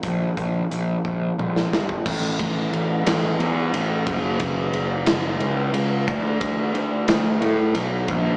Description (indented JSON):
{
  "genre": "quiet-loud alternative rock",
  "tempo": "60 BPM (dotted quarters)",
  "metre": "6/8",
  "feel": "straight",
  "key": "unclear",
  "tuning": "A4 = 440 Hz",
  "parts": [
    { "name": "fuzz picked electric bass", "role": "bass", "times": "0.0-8.4 s", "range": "F#1 to A2", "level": "-22 LUFS", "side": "equal", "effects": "overdrive" },
    { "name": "big rock drum kit", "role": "drums", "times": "0.0-8.2 s", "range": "crash cymbal, hi-hat, kick drum, ride cymbal, snare drum, toms", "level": "-24 LUFS", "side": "equal", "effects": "none" }
  ],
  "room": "little or no reverb",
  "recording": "live gig heard through the venue's PA, club reverb, small speaker sound",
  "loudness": "-20 LUFS",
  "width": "side -37 dB against mid",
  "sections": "0.0-2.0 A section; 2.0-8.4 B section",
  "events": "drum fill 1.0-2.0",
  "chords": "none"
}